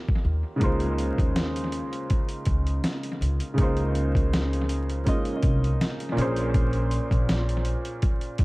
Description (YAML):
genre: lo-fi hip hop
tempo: 81 BPM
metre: 4/4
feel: swing 56% on 16ths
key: unclear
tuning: A4 = 439 Hz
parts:
  - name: felt-muted upright piano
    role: accompaniment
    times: 0.0-8.4 s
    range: Bb2 to Eb5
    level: -28 LUFS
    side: right 1 dB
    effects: low-pass filter, analog delay
  - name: dusty soul sampler-style drum kit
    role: drums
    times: 0.1-8.4 s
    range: hi-hat, kick drum, snare drum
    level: -25 LUFS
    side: equal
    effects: overdrive, analog delay
  - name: upright bass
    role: bass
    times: 0.2-8.4 s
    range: Bb1 to Eb2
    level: -26 LUFS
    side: equal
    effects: none
room: small room ambience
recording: echo-heavy mix, vinyl crackle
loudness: -23 LUFS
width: side -22 dB against mid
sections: 0.0-8.4 A section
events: break 0.0-0.6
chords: 0.0 Eb7; 0.6 Dbmaj13; 6.2 Bbm9